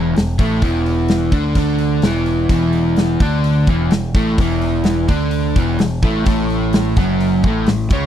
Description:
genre	blues rock power trio and southern rock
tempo	127 BPM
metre	4/4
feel	straight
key	unclear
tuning	A4 = 441 Hz
part	overdriven semi-hollow guitar	riff	0.0-8.1 s	E2 to D4	-17 LUFS	equal	none
part	growling picked electric bass	bass	0.0-8.1 s	E1 to D2	-20 LUFS	right 1 dB	overdrive
part	big rock drum kit	drums	0.2-8.0 s	hi-hat, kick drum, snare drum	-19 LUFS	equal	none
room	little or no reverb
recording	dry, close 1970s-style studio recording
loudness	-14 LUFS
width	side -10 dB against mid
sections	0.0-8.1 A section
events	none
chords	0.0 E7sus4; 6.3 F#m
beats	0.15 | 0.62 1.09 1.56 2.03 | 2.50 2.97 3.44 3.91 | 4.38 4.86 5.33 5.80 | 6.27 6.74 7.21 7.68

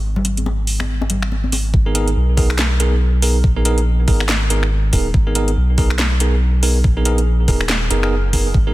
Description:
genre	deep dubstep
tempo	141 BPM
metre	4/4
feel	swing 59% on 16ths, half-time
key	G# minor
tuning	A4 = 441 Hz
part	soft dub sub bass	bass	0.0-8.7 s	D#1 to B1	-17 LUFS	equal	tube saturation
part	garage drum kit	drums	0.2-8.4 s	finger snaps, handclaps, hi-hat, snare drum	-22 LUFS	equal	small room reverb, soft clipping on snare
part	congas	percussion	0.2-1.6 s	none	-24 LUFS	left 2 dB	dub echo
part	electronic kick drum	drums	1.7-8.6 s	none	-16 LUFS	equal	small room reverb
part	bell-like tine electric piano	stabs	1.9-8.7 s	B3 to A#4	-22 LUFS	right 2 dB	fast stereo tremolo, dub echo
room	little or no reverb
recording	dense, heavily limited modern master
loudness	-14 LUFS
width	side -17 dB against mid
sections	0.0-1.7 A section; 1.7-8.7 B section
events	drop 1.7-8.7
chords	0.0 N.C.; 1.7 G#madd9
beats	| 0.03 0.46 0.89 1.31 | 1.74 2.16 2.59 3.01 | 3.44 3.86 4.29 4.71 | 5.14 5.57 5.99 6.42 | 6.84 7.27 7.69 8.12 | 8.54

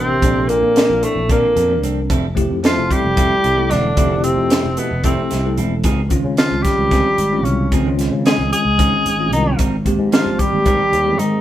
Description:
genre	electric jazz fusion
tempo	224 BPM (eighths)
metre	7/8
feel	straight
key	unclear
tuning	A4 = 440 Hz
part	clear tenor saxophone	melody	0.0-11.4 s	A3 to Ab4	-18 LUFS	equal	none
part	mellow bass clarinet	second line	0.0-11.4 s	A2 to Ab3	-26 LUFS	equal	none
part	bell-like tine electric piano	accompaniment	0.0-11.4 s	Eb3 to Bb4	-22 LUFS	left 1 dB	medium stereo tremolo
part	sustaining fretless electric bass	bass	0.0-11.4 s	E1 to Db3	-21 LUFS	equal	none
part	clean electric guitar	stabs	0.2-10.8 s	F3 to Bb4	-26 LUFS	right 4 dB	none
part	crisp fusion drum kit	drums	0.2-11.3 s	hi-hat, kick drum, snare drum	-19 LUFS	equal	none
room	moderate stone room reverb, RT60 1.1 s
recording	band playing live in one room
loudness	-14 LUFS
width	side -12 dB against mid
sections	0.0-11.4 A section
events	none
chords	0.0 Bbmaj9; 2.1 Fmaj9; 5.8 Dbmaj9; 9.6 Abmaj9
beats	| 0.23 0.49 0.76 1.03 1.30 1.56 1.83 | 2.10 2.37 2.63 2.90 3.17 3.44 3.71 | 3.97 4.24 4.51 4.78 5.04 5.31 5.58 | 5.85 6.11 6.38 6.65 6.92 7.18 7.45 | 7.72 7.99 8.25 8.52 8.79 9.06 9.32 | 9.59 9.86 10.13 10.39 10.66 10.93 11.20

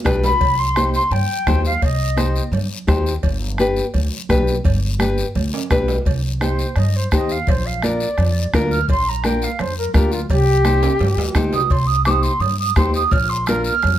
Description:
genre	latin, cumbia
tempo	170 BPM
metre	4/4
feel	straight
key	C minor from 6.1 s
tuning	A4 = 440 Hz
part	nylon-string guitar	accompaniment	0.0-13.7 s	D4 to C5	-21 LUFS	left 2 dB	none
part	upright bass	bass	0.0-14.0 s	G1 to G2	-20 LUFS	equal	none
part	bombo	percussion	0.1-14.0 s	none	-21 LUFS	equal	none
part	guiro	percussion	0.1-14.0 s	none	-32 LUFS	left 7 dB	none
part	timbales and cowbell	percussion	0.1-14.0 s	none	-30 LUFS	right 6 dB	none
part	mellow jazz flute	melody	0.2-2.5, 6.4-14.0 s	F4 to F6	-20 LUFS	right 1 dB	none
part	congas	percussion	0.2-14.0 s	none	-27 LUFS	right 3 dB	none
room	little or no reverb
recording	close, detailed microphones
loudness	-16 LUFS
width	side -12 dB against mid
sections	0.0-6.1 A section; 6.1-14.0 B section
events	drum fill 0.0-0.4, 5.5-6.1, 10.8-11.7; flute solo 6.1-14.0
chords	0.4 Cm; 3.2 G; 6.1 Cm; 7.5 Bb; 10.3 Cm; 13.1 Bb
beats	0.06 | 0.41 0.76 1.12 1.47 | 1.82 2.17 2.53 2.88 | 3.23 3.59 3.94 4.29 | 4.65 5.00 5.35 5.71 | 6.06 6.41 6.76 7.12 | 7.47 7.83 8.18 8.53 | 8.88 9.24 9.59 9.94 | 10.30 10.65 11.00 11.36 | 11.71 12.06 12.42 12.77 | 13.13 13.48 13.83

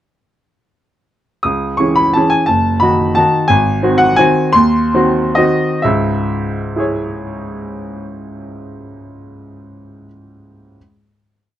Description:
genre	classical, piano waltz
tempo	123-188 BPM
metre	3/4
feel	rubato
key	C# minor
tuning	A4 = 440 Hz
part	bright baby grand piano	solo	1.4-10.8 s	F#1 to D#6	-12 LUFS	equal	none
room	moderate studio ambience, RT60 0.5 s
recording	worn, warbling old tape, cassette tape, warbly pitch drift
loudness	-11 LUFS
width	side -12 dB against mid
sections	1.4-5.8 A section; 5.8-8.6 final chord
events	slowing down 3.0-5.8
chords	1.4 C#m; 2.5 D#dim/F#; 3.5 G#7; 5.8 C#m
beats	| 1.45 1.80 2.15 | 2.49 2.82 3.16 | 3.49 3.82 4.18 | 4.56 4.95 5.38 | 5.85 6.30 6.76 | 7.22 7.68 8.15

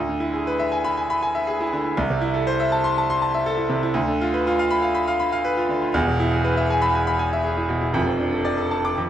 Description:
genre	classical, virtuoso piano study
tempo	120 BPM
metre	4/4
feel	rubato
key	unclear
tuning	A4 = 442 Hz
part	clear concert grand piano	solo	0.0-9.1 s	E1 to D6	-19 LUFS	equal	none
room	moderate recital hall reverb, RT60 1.3 s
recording	vinyl crackle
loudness	-19 LUFS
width	side -10 dB against mid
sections	0.0-9.1 A section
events	none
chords	0.0 E7/D; 2.0 Am/C; 4.0 Bdim/D; 5.9 E; 8.0 Dm/F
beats	0.46 0.96 1.47 | 1.97 2.46 2.96 3.46 | 3.95 4.45 4.94 5.44 | 5.94 6.44 6.95 7.45 | 7.96 8.47 8.98

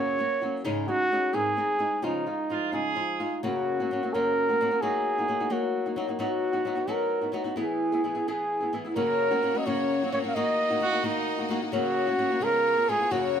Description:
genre	mexican folk, mariachi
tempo	87 BPM (dotted quarters)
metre	6/8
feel	straight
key	Db major, F# major from 3.4 s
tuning	A4 = 440 Hz
part	dark trumpet	melody	0.0-13.4 s	Eb4 to E#5	-26 LUFS	right 2 dB	none
part	flamenco guitar	accompaniment	0.0-13.4 s	Gb2 to Ab4	-29 LUFS	left 3 dB	none
part	clear trumpet	second line	2.5-3.4, 10.8-11.6 s	D#4 to Ab4	-29 LUFS	right 5 dB	none
part	bright studio violin section	sustained chords	9.0-13.4 s	A#3 to D#5	-37 LUFS	left 2 dB	none
room	moderate small room reverb, RT60 0.6 s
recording	none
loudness	-24 LUFS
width	side -8 dB against mid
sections	0.0-3.4 A section; 3.4-13.4 B section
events	none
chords	0.0 Gb; 0.6 Absus4; 1.3 Ab; 2.0 Dbadd9; 3.4 F#; 4.8 D#m/F#; 6.2 B/F#; 7.6 E; 9.0 F#; 10.4 D#m; 11.7 F#/C#; 12.4 C#7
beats	| 0.65 1.34 | 2.03 2.73 | 3.43 4.13 | 4.83 5.51 | 6.20 6.88 | 7.58 8.27 | 8.97 9.66 | 10.36 11.05 | 11.73 12.42 | 13.11

